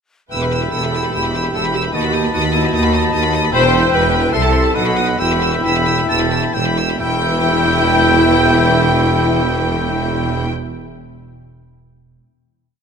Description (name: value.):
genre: classical, dramatic, fast romantic movement for symphony orchestra.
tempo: 130-152 BPM.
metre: 4/4.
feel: rubato.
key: E minor.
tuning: A4 = 440 Hz.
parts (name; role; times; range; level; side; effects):
rich symphonic violin section; melody; 0.3-10.5 s; G5 to E6; -21 LUFS; left 1 dB; none.
clear oboe; second line; 0.3-10.5 s; E5 to B5; -25 LUFS; equal; none.
concert flute; second line; 0.3-10.5 s; G5 to B5; -26 LUFS; left 2 dB; none.
mellow clarinet; second line; 0.3-10.5 s; D#5 to E5; -28 LUFS; right 1 dB; none.
warm symphonic violin section; second line; 0.3-10.5 s; B4 to B5; -27 LUFS; left 3 dB; none.
rich symphonic viola section; accompaniment; 0.3-10.5 s; D#4 to C5; -22 LUFS; left 1 dB; none.
dark French horn section; sustained chords; 0.3-10.5 s; B3 to G4; -24 LUFS; left 3 dB; none.
mellow trumpet section; stabs; 0.3-10.5 s; F#5 to B5; -24 LUFS; left 1 dB; none.
clear symphonic double bass section; bass; 0.3-10.5 s; E1 to D#2; -23 LUFS; right 3 dB; none.
rich symphonic cello section; bass; 0.3-10.5 s; D#2 to C3; -22 LUFS; right 1 dB; none.
warm tuba; bass; 0.3-10.5 s; E1 to D#2; -22 LUFS; right 4 dB; none.
room: moderate concert hall reverb, RT60 2.4 s.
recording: none.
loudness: -13 LUFS.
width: side -6 dB against mid.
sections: 0.3-7.0 A section; 7.0-10.5 final chord.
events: slowing down 2.7-7.0.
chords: 0.3 Em; 1.9 B7/D#; 3.5 Em; 4.3 Am/C; 4.8 B; 5.2 Em.